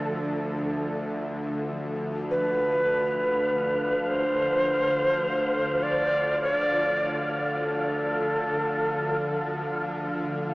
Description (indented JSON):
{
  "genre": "ambient",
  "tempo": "free time",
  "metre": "none",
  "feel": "none",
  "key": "D minor",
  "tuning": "A4 = 440 Hz",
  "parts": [
    { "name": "reedy shakuhachi", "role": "melody", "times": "0.0-9.9 s", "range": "A4 to D5", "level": "-25 LUFS", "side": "equal", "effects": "tape echo" },
    { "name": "granular cloud pad", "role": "sustained chords", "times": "0.0-10.5 s", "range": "D3 to A4", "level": "-36 LUFS", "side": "equal", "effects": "built-in reverb" },
    { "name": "bowed-like drone", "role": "drone", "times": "0.0-10.5 s", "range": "D2 to D3", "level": "-31 LUFS", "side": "equal", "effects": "built-in reverb" },
    { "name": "wind-like tuned noise texture", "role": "texture", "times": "0.0-10.5 s", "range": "E5 to F5", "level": "-35 LUFS", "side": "equal", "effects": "built-in reverb" }
  ],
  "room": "wet huge ambient reverb, RT60 7.4 s",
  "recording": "small speaker sound",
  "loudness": "-24 LUFS",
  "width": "side -21 dB against mid",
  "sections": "0.0-10.5 A section",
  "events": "none",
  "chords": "0.0 Dmadd9"
}